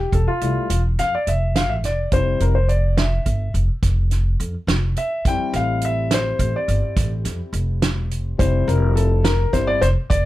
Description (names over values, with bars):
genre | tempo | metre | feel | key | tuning
progressive instrumental, band music in an uneven meter | 211 BPM (eighths) | 11/8 | straight | F major | A4 = 442 Hz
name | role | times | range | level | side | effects
dark grand piano | accompaniment | 0.0-10.3 s | G3 to G5 | -22 LUFS | left 2 dB | none
upright bass | bass | 0.0-10.3 s | E1 to F2 | -20 LUFS | equal | none
natural country drum kit | drums | 0.1-10.2 s | hi-hat, kick drum, snare drum | -22 LUFS | right 2 dB | none
room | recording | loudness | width
little or no reverb | dark, warm production | -18 LUFS | side -16 dB against mid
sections
0.0-10.3 A section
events
grand piano solo 0.0-10.3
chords
0.0 Fmaj7